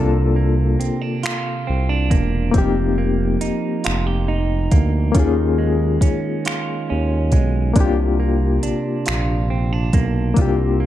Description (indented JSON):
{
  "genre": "slow six-eight R&B",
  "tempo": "46 BPM (dotted quarters)",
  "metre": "6/8",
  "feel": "straight",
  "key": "unclear",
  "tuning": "A4 = 440 Hz",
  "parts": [
    { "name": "clean electric guitar", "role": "second line", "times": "0.0-10.9 s", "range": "C3 to G4", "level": "-23 LUFS", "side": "right 5 dB", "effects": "spring reverb" },
    { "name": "barky reed electric piano", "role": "accompaniment", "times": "0.0-10.9 s", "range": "Bb3 to A4", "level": "-23 LUFS", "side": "left 7 dB", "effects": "overdrive, medium tremolo" },
    { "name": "smooth synth bass", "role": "bass", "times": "0.0-10.9 s", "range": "E1 to Eb2", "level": "-19 LUFS", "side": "equal", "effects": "none" },
    { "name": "smooth R&B drum kit", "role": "drums", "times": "0.8-10.6 s", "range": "finger snaps, hi-hat, kick drum", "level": "-19 LUFS", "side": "equal", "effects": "none" }
  ],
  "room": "little or no reverb",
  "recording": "dark, warm production",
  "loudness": "-16 LUFS",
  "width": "side -13 dB against mid",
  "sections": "0.0-10.9 A section",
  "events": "none",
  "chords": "0.0 C9sus4; 2.5 F9sus4; 5.1 Eb9sus4; 7.8 C9sus4",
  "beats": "1.24 | 2.54 3.84 | 5.15 6.45 | 7.76 9.06 | 10.37"
}